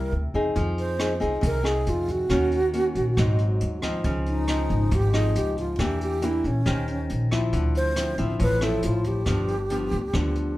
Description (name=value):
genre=bossa nova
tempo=138 BPM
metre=4/4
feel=straight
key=unclear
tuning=A4 = 440 Hz
part: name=breathy wooden-headed alto flute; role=melody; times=0.0-10.6 s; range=Db4 to C5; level=-27 LUFS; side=right 1 dB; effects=none
part: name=nylon-string guitar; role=accompaniment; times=0.0-10.6 s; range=G2 to C5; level=-27 LUFS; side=left 1 dB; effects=none
part: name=upright bass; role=bass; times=0.0-10.5 s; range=G1 to Bb2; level=-26 LUFS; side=equal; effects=none
part: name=jazz brush drum kit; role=drums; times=0.6-10.5 s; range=hi-hat, kick drum, rim click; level=-31 LUFS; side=equal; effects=none
room=wet studio reverb, RT60 0.8 s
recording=heard from further back in the room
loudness=-22 LUFS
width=side -16 dB against mid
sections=0.0-10.6 A section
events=none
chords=0.0 C7; 0.6 Fm7; 2.3 Ebm7; 3.2 Ab7; 4.0 Dbmaj9; 5.8 Em7b5; 6.7 Eb13; 7.5 Dm9; 9.3 G7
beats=0.13 | 0.56 1.00 1.43 1.87 | 2.31 2.74 3.18 3.61 | 4.05 4.48 4.92 5.35 | 5.79 6.22 6.66 7.10 | 7.53 7.97 8.40 8.84 | 9.27 9.71 10.14 10.58